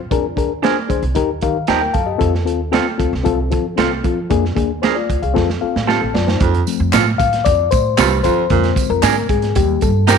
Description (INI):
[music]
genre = uptempo 1960s-style soul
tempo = 114 BPM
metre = 4/4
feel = straight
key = F mixolydian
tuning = A4 = 439 Hz
[part]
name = upright bass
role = bass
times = 0.0-10.2 s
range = A1 to F3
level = -20 LUFS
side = right 1 dB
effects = none
[part]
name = mellow reed electric piano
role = accompaniment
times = 0.1-10.2 s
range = D3 to A5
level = -18 LUFS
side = left 11 dB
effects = none
[part]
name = crunchy breakbeat drum kit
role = drums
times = 0.1-10.2 s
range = hi-hat, kick drum, snare drum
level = -20 LUFS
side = right 4 dB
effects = none
[part]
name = electric guitar through a small old amp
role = stabs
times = 0.6-10.2 s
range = C4 to Bb4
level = -20 LUFS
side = right 14 dB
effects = none
[part]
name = warm baritone saxophone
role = riff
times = 6.4-10.2 s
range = F2 to C3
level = -20 LUFS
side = right 13 dB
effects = none
[part]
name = tambourine and handclaps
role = percussion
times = 6.7-10.2 s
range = none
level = -25 LUFS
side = left 3 dB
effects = none
[sound]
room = light reverb, small room ambience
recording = 1960s-style stereo with parts hard left and right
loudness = -14 LUFS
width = side -6 dB against mid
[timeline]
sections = 0.0-6.4 A section; 6.4-10.2 B section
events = reed electric piano fill 1.2-2.2, 5.4-6.4; drum fill 5.4-6.4; reed electric piano solo 6.4-10.2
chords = 0.1 Bb7; 1.2 Eb; 2.2 F; 4.3 Bb7; 5.4 F; 8.5 Bb7/F; 9.6 Eb